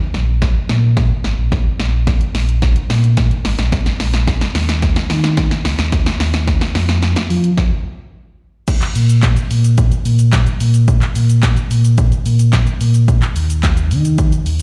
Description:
dance-pop; 109 BPM; 4/4; straight; A4 = 441 Hz
sub bass with octave; bass; 0.1-14.6 s; Ab1 to F3; -16 LUFS; equal; sidechain pumping
punchy analog drum machine; drums; 0.1-14.6 s; crash cymbal, handclaps, hi-hat, kick drum, shaker, snare drum; -19 LUFS; equal
little or no reverb; live gig heard through the venue's PA, recital hall reverb; -15 LUFS; mono
0.0-8.7 A section; 8.7-14.6 B section
build-up 0.0-8.7; drum fill 0.0-7.6; stop 7.6-8.7; drop 8.7-14.6

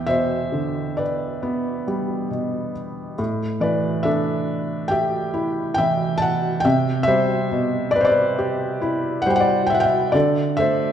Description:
classical, lyrical solo piano; 69 BPM; 4/4; rubato; E minor; A4 = 440 Hz
felt-muted upright piano; solo; 0.0-10.9 s; E2 to A5; -19 LUFS; equal
moderate scoring stage reverb, RT60 1.9 s; recorded in a church or concert hall; -19 LUFS; side -9 dB against mid
0.0-10.9 A section
0.0 Em7; 3.2 A7sus4; 6.6 Cmaj7; 10.1 D5

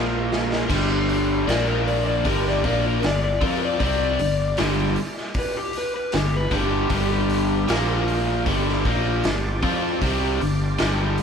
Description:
blues rock power trio and southern rock; 77 BPM; 4/4; straight; A4 = 440 Hz
overdriven tonewheel organ; sustained chords; 0.0-11.2 s; F3 to F5; -34 LUFS; right 3 dB; slow rotary speaker, chorus vibrato
overdriven electric guitar; riff; 0.0-11.2 s; G2 to F4; -23 LUFS; left 1 dB
fuzz fingered electric bass; bass; 0.0-11.2 s; G1 to F2; -25 LUFS; equal; overdrive
raw garage drum kit; drums; 0.3-11.2 s; crash cymbal, hi-hat, kick drum, snare drum; -27 LUFS; equal
overdriven slide guitar; melody; 1.5-8.1 s; G4 to D5; -26 LUFS; left 4 dB; digital delay
moderate small room ambience, RT60 0.5 s; band playing live in one room; -20 LUFS; side -7 dB against mid
0.7-11.2 A section
drum fill 0.0-0.7
0.0 Bb5; 0.7 G7; 1.5 Bb5; 2.3 G7; 7.7 Bb5; 8.5 G7(no3)

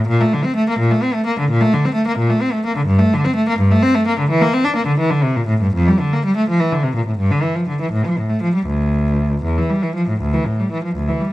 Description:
classical, baroque-style suite movement for unaccompanied cello; 84 BPM (dotted quarters); 12/8; uneven beats, rubato; A4 = 437 Hz
rich cello; solo; 0.0-11.3 s; D2 to D4; -15 LUFS; equal
moderate stone room reverb, RT60 1.2 s; close, detailed microphones, vinyl crackle; -15 LUFS; side -16 dB against mid
0.0-11.3 A section

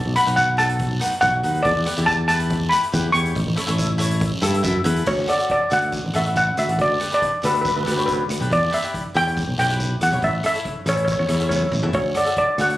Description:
calypso; 140 BPM; 4/4; straight; D major; A4 = 440 Hz
steel pan; melody; 0.0-12.8 s; B4 to C#6; -20 LUFS; equal; plate reverb
fingered electric bass; bass; 0.0-12.8 s; A1 to G2; -22 LUFS; equal
cavaquinho; accompaniment; 0.2-12.8 s; D4 to E5; -28 LUFS; equal; plate reverb
street-band drum kit; drums; 0.2-12.8 s; crash cymbal, hi-hat, kick drum, rim click, snare drum, toms; -30 LUFS; equal
guiro; percussion; 0.4-12.7 s; -32 LUFS; right 1 dB
moderate small room reverb, RT60 0.5 s; recorded on a phone in the room, club reverb; -18 LUFS; side -16 dB against mid
0.0-5.1 A section; 5.1-12.8 B section
drum fill 11.5-11.9
0.0 B7; 1.7 Em7; 3.4 A; 5.1 D; 6.8 G/D; 8.5 Em; 10.2 A; 11.9 D

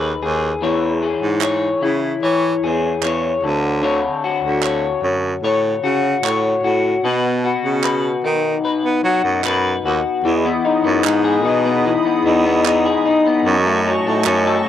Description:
indie pop, bedroom pop; 75 BPM; 4/4; straight; E major; A4 = 440 Hz
electric guitar through a small old amp; accompaniment; 0.0-14.7 s; F#2 to C#5; -17 LUFS; left 4 dB; analog chorus, vibrato effect, cassette tape
breathy baritone saxophone; bass; 0.0-14.7 s; D2 to B3; -20 LUFS; right 3 dB
group handclap; percussion; 1.4-14.4 s; -23 LUFS; right 10 dB
hollow soft pad; sustained chords; 10.2-14.7 s; F#4 to D#6; -23 LUFS; right 3 dB; chorus, cassette tape
moderate spring reverb, RT60 1.3 s, studio reverb; home recording on cassette; -15 LUFS; side -10 dB against mid
0.0-10.2 A section; 10.2-14.7 B section
0.0 Emaj7 (rootless); 0.6 E6; 3.4 Dmaj7; 7.0 B; 10.2 Emaj7; 13.5 F#m

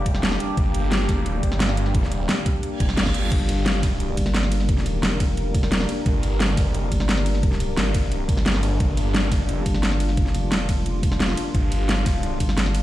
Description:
dark technical drum and bass; 175 BPM; 4/4; straight; G minor; A4 = 440 Hz
deep dark ambient pad; sustained chords; 0.0-12.8 s; G3 to Bb4; -28 LUFS; left 2 dB; chorus, built-in reverb, sidechain pumping
phased detuned saw bass; bass; 0.0-12.4 s; F1 to G1; -24 LUFS; equal; phaser, overdrive, sidechain pumping
dubstep drum kit; drums; 0.1-12.8 s; crash cymbal, hi-hat, ride cymbal, snare drum; -25 LUFS; equal
electronic kick drum; drums; 0.1-12.5 s; -22 LUFS; equal
reverse cymbal; sound effects; 2.7-3.3 s; -32 LUFS; right 4 dB
vowel-sweep wobble bass; bass; 4.2-12.8 s; F1 to G1; -23 LUFS; equal; chorus
digital ambience; played on a big sound system in a bare room, stone room reverb; -19 LUFS; side -14 dB against mid
0.0-12.8 A section
reverse cymbal 2.7-3.3
0.0 Gm

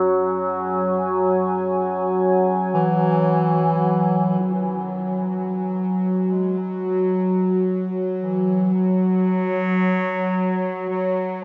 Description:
dark ambient drone; 55 BPM; 4/4; straight; A4 = 440 Hz
deep dark ambient pad; sustained chords; 0.0-4.4 s; Gb3 to Ab5; -25 LUFS; equal; chorus, built-in reverb
overtone-sweeping drone; drone; 0.0-11.4 s; Gb3; -24 LUFS; equal; chorus, built-in reverb
warm bass clarinet; melody; 2.7-11.4 s; Eb3 to Ab3; -27 LUFS; equal; diffuse ambient delay
wet huge ambient reverb, RT60 8.6 s; in a vast, echoing space, nothing above 7.6 kHz; -21 LUFS; mono
0.0-4.4 A section; 4.4-11.4 B section
fade-in on bass clarinet 4.4-11.4
0.0 Gb5; 4.4 N.C.

